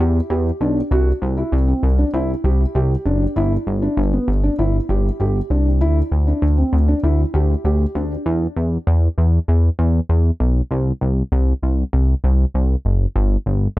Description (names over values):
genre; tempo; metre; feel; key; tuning
synth-pop; 98 BPM; 4/4; straight; unclear; A4 = 441 Hz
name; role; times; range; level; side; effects
felt-muted upright piano; arpeggios; 0.0-8.1 s; B3 to G4; -22 LUFS; equal; ping-pong delay
chorused synth bass; bass; 0.0-13.8 s; F#1 to E2; -16 LUFS; equal; none
room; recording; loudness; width
small room ambience; none; -16 LUFS; side -17 dB against mid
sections
0.0-8.3 A section; 8.3-13.8 B section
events
none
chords
0.0 Em; 0.9 C; 3.4 G5; 5.8 Dsus4; 8.3 E5; 10.7 N.C.